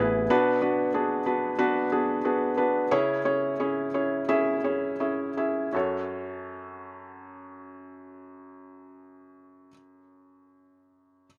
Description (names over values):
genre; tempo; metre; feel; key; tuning
pop; 80-94 BPM; 4/4; straight; F# minor; A4 = 440 Hz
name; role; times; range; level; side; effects
felt-muted upright piano; accompaniment; 0.0-11.3 s; F#2 to E5; -27 LUFS; equal; none
room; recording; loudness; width
little or no reverb; recorded outdoors, with no room sound; -26 LUFS; mono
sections
0.0-5.7 A section; 5.7-8.8 B section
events
slowing down 0.3-5.7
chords
0.3 Bm; 2.9 C#m; 5.7 F#m